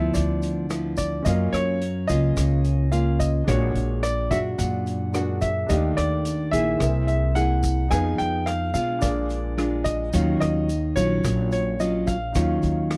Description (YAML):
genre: bossa nova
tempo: 108 BPM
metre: 4/4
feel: straight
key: Eb minor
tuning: A4 = 438 Hz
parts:
  - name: warm baby grand piano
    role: melody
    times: 0.0-13.0 s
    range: Db5 to Ab5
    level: -30 LUFS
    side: equal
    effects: none
  - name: clear baby grand piano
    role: accompaniment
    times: 0.0-13.0 s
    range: C4 to F#5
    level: -38 LUFS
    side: equal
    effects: none
  - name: nylon-string guitar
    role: accompaniment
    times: 0.0-13.0 s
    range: G2 to Ab4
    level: -28 LUFS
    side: equal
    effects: none
  - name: upright bass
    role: bass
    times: 0.0-13.0 s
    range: Bb1 to Cb3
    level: -28 LUFS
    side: equal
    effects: none
  - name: egg shaker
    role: percussion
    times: 0.1-12.9 s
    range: none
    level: -43 LUFS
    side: equal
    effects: none
  - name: vintage drum kit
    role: drums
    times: 0.2-13.0 s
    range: hi-hat, kick drum, rim click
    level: -34 LUFS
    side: equal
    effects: none
room: studio reverb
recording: dry, close 1970s-style studio recording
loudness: -23 LUFS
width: mono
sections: 0.0-13.0 A section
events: none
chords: 0.0 G13 (rootless); 1.3 Gbmaj7; 3.5 Bb7alt; 5.7 Ebmaj9#11; 6.8 C7b13; 7.9 Fm7b5; 9.0 Bb7; 10.1 Ebm9